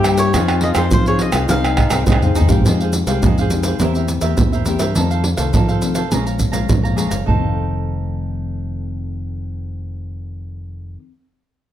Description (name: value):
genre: samba and choro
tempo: 104 BPM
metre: 4/4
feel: straight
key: unclear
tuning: A4 = 439 Hz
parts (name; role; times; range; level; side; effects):
- cavaquinho; melody; 0.0-2.3 s; C5 to F5; -23 LUFS; right 1 dB; plate reverb
- clear trombone; second line; 0.0-2.6 s; C4 to G4; -23 LUFS; left 5 dB; none
- cavaquinho; accompaniment; 0.0-11.0 s; Eb4 to Bb5; -26 LUFS; right 6 dB; none
- nylon-string guitar; accompaniment; 0.0-11.1 s; F2 to Ab4; -23 LUFS; left 7 dB; none
- fingered electric bass; bass; 0.0-11.0 s; F1 to F3; -21 LUFS; equal; none
- egg shaker, pandeiro, tamborim and surdo; percussion; 0.0-7.4 s; none; -17 LUFS; right 1 dB; none
room: moderate large studio reverb, RT60 0.8 s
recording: none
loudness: -15 LUFS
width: side -11 dB against mid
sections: 0.0-2.6 A section; 2.6-7.3 B section; 7.3-9.6 C section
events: drum fill 1.9-2.6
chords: 0.3 Fm9; 3.8 C7/E; 5.0 F7; 6.1 Bbm7; 7.3 F7